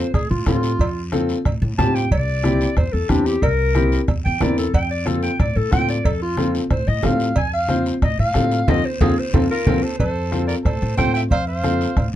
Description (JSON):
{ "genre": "latin, cumbia", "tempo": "183 BPM", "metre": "4/4", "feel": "straight", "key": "F major", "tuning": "A4 = 440 Hz", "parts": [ { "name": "clear clarinet", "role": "melody", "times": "0.0-12.1 s", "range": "D4 to A5", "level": "-23 LUFS", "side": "left 1 dB", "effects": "none" }, { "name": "clear upright piano", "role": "accompaniment", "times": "0.0-11.9 s", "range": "C4 to C5", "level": "-22 LUFS", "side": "left 2 dB", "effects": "none" }, { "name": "upright bass", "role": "bass", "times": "0.1-12.1 s", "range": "C2 to A2", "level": "-22 LUFS", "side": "equal", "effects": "none" }, { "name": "bombo", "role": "percussion", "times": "0.1-12.1 s", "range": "none", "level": "-22 LUFS", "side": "right 1 dB", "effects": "none" }, { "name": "congas", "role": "percussion", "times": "0.1-12.1 s", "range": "none", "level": "-27 LUFS", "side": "equal", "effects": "none" }, { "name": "cowbell and timbales", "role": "percussion", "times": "0.1-12.1 s", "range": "none", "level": "-29 LUFS", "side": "right 3 dB", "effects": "none" }, { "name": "guiro", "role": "percussion", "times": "0.1-12.2 s", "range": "none", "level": "-38 LUFS", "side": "left 4 dB", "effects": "none" }, { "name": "bright trumpet", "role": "second line", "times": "9.5-12.1 s", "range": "F4 to E5", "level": "-30 LUFS", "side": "right 4 dB", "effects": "none" } ], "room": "moderate booth ambience, RT60 0.2 s", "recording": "dark, warm production", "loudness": "-17 LUFS", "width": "side -12 dB against mid", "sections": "0.0-10.0 A section; 10.0-12.2 B section", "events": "clarinet solo 0.0-10.0; band accent 8.7-10.0; drum fill 9.5-10.0", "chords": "0.0 F; 2.1 C7; 4.7 F", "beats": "0.14 0.47 | 0.80 1.13 1.46 1.78 | 2.11 2.44 2.77 3.10 | 3.43 3.76 4.08 4.41 | 4.74 5.07 5.40 5.73 | 6.06 6.39 6.71 7.04 | 7.37 7.70 8.03 8.36 | 8.69 9.02 9.34 9.67 | 10.00 10.33 10.66 10.99 | 11.31 11.64 11.97" }